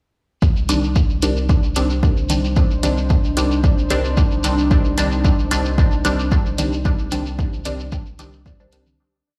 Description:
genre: dub techno.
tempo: 112 BPM.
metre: 4/4.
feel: straight.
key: C minor.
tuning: A4 = 440 Hz.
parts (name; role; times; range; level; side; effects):
deep dark ambient pad; sustained chords; 1.7-9.0 s; D4 to C5; -29 LUFS; equal; chorus, built-in reverb, sidechain pumping.
soft dub sub bass; bass; 0.4-9.0 s; C2; -24 LUFS; equal; sidechain pumping.
electronic kick drum; drums; 0.4-8.6 s; none; -19 LUFS; equal; overdrive.
shekere; percussion; 0.4-9.0 s; none; -32 LUFS; equal; none.
filtered dub chord stab; stabs; 0.7-8.9 s; Eb3 to D4; -26 LUFS; equal; chorus, phaser, vintage 12-bit sampler grit, sidechain pumping, dub echo.
electronic hi-hat; drums; 0.7-8.8 s; none; -32 LUFS; equal; overdrive.
electronic toms; percussion; 0.7-9.0 s; none; -34 LUFS; equal; none.
room: light reverb, digital ambience.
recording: played on a big sound system in a bare room, stone room reverb.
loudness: -18 LUFS.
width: mono.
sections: 0.4-9.0 groove.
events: fade-out 6.1-9.0.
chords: 0.4 Cmadd9.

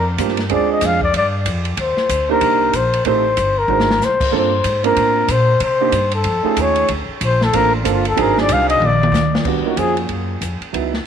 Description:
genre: jazz, small-group swing and bop.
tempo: 188 BPM.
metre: 4/4.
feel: swing 61% on 8ths.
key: unclear.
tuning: A4 = 440 Hz.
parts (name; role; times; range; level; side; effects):
breathy flugelhorn; melody; 0.0-10.0 s; D4 to F5; -17 LUFS; left 3 dB; none.
upright bass; bass; 0.0-11.0 s; G1 to C3; -22 LUFS; equal; none.
warm upright piano; accompaniment; 0.2-10.9 s; Gb3 to C5; -20 LUFS; right 13 dB; none.
open jazz drum kit; drums; 0.2-11.0 s; crash cymbal, hi-hat, kick drum, ride cymbal, snare drum, toms; -23 LUFS; equal; none.
breathy tenor saxophone; second line; 9.6-10.0 s; Eb3 to F3; -26 LUFS; right 9 dB; none.
room: moderate spring reverb, RT60 2.5 s.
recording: 1960s-style stereo.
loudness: -14 LUFS.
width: side -8 dB against mid.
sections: 0.0-9.4 A section; 9.4-11.1 B section.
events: flugelhorn solo 0.0-9.4; drum fill 3.7-4.0, 8.8-9.4.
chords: 0.5 Dm7b5; 1.1 Dmadd11 (rootless); 1.8 Cm9; 3.0 Am7b5; 3.7 Ab7#11; 4.3 Gm11; 5.6 Cm9; 6.2 F7alt; 6.9 Bbmaj7; 8.2 Ab7#11; 8.8 Bb; 9.4 Ebm9.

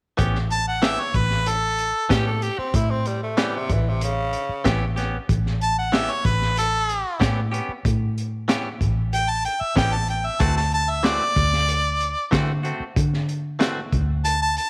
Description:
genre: straight-eighth soul blues.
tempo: 94 BPM.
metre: 4/4.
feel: straight.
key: A mixolydian.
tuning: A4 = 440 Hz.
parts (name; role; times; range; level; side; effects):
direct-recorded clean electric guitar; stabs; 0.2-13.8 s; E3 to G4; -31 LUFS; equal; none.
vintage muted fingered electric bass; bass; 0.2-14.6 s; A1 to D3; -26 LUFS; equal; none.
crunchy breakbeat drum kit; drums; 0.2-14.7 s; hi-hat, kick drum, snare drum; -27 LUFS; equal; none.
clear harmonica; melody; 0.5-14.7 s; A4 to A5; -25 LUFS; equal; slapback echo.
growling tenor saxophone; second line; 2.1-4.6 s; C3 to A4; -29 LUFS; equal; slapback echo.
room: light reverb.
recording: none.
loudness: -22 LUFS.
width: mono.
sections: 0.2-14.7 A section.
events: none.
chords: 0.2 A9; 10.4 D9.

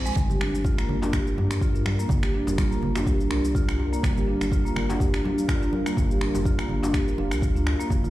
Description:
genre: afro house.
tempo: 124 BPM.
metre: 4/4.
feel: swing 54% on 16ths.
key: G minor.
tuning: A4 = 437 Hz.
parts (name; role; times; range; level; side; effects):
dark analog pad; sustained chords; 0.0-8.1 s; G3 to C5; -33 LUFS; equal; chorus, sidechain pumping.
warm sub bass; bass; 0.0-8.1 s; F1 to G2; -28 LUFS; equal; sidechain pumping.
marimba with medium mallets; arpeggios; 0.1-8.1 s; F3 to G4; -27 LUFS; equal; sidechain pumping, ping-pong delay.
electronic shaker and finger snaps; drums; 0.1-8.1 s; none; -34 LUFS; equal; studio reverb.
electronic kick drum; drums; 0.2-8.0 s; none; -25 LUFS; equal; studio reverb.
congas; percussion; 0.2-8.1 s; none; -34 LUFS; right 1 dB; none.
djembe; percussion; 0.2-8.0 s; none; -35 LUFS; left 2 dB; none.
room: little or no reverb.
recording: played on a big sound system in a bare room, large studio reverb.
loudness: -22 LUFS.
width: side -15 dB against mid.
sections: 0.0-8.1 A section.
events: none.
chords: 0.2 Gm7.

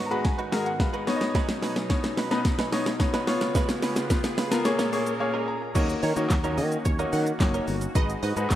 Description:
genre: dance-pop.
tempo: 109 BPM.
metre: 4/4.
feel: straight.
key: Eb minor.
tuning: A4 = 439 Hz.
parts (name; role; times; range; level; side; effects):
bright grand piano; accompaniment; 0.0-8.5 s; Ab3 to Bb5; -28 LUFS; left 2 dB; sidechain pumping.
supersaw pad; sustained chords; 0.0-8.6 s; Ab2 to Cb5; -36 LUFS; equal; sidechain pumping.
direct-recorded clean electric guitar; riff; 0.0-8.5 s; F#3 to Cb5; -34 LUFS; right 6 dB; ensemble chorus.
riser; sound effects; 2.0-5.2 s; none; -40 LUFS; equal; none.
smooth R&B drum kit; drums; 0.1-8.6 s; crash cymbal, handclaps, hi-hat, kick drum, shaker, snare drum; -26 LUFS; equal; none.
sustaining fretless electric bass; bass; 5.8-8.6 s; Gb1 to Eb3; -28 LUFS; equal; sidechain pumping.
wide unison pluck; melody; 6.0-8.6 s; Db5 to Gb5; -35 LUFS; right 1 dB; phaser, sidechain pumping.
room: moderate lush hall reverb, RT60 2.3 s.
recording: rough home demo mix.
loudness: -23 LUFS.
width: side -12 dB against mid.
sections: 0.0-5.8 A section; 5.8-8.6 B section.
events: build-up 0.0-5.8; drum fill 0.0-5.2; grand piano fill 0.0-1.4, 4.9-5.8; break 5.2-5.8; drop 5.8-8.6.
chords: 0.0 Abm7; 1.1 Badd9; 3.3 Db7; 4.7 Bbm7; 5.8 Ebm7; 8.0 Abm7.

